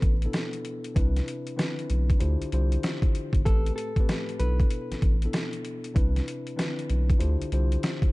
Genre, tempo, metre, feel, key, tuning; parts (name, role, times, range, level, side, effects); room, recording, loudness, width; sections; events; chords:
hip hop, boom-bap hip-hop; 96 BPM; 4/4; swing 63% on 16ths; A4 = 440 Hz
nylon-string guitar; melody; 0.0-5.9 s; A4 to B4; -37 LUFS; equal; high-pass filter, low-pass filter, ping-pong delay
mellow tine electric piano; accompaniment; 0.0-8.1 s; A2 to C5; -33 LUFS; left 2 dB; high-pass filter, low-pass filter
saturated sub bass; bass; 0.0-7.8 s; G1 to D2; -25 LUFS; equal
boom bap sampler-style drum kit; drums; 0.0-8.1 s; hi-hat, kick drum, snare drum; -26 LUFS; equal
little or no reverb; dark, warm production, vinyl crackle, nothing above 10.7 kHz; -24 LUFS; side -22 dB against mid
0.0-8.1 A section
0.0 E7sus4; 1.0 Cmaj9; 2.2 Dm11; 3.5 Am9; 4.4 E7sus4; 6.0 Cmaj9; 7.2 Dm11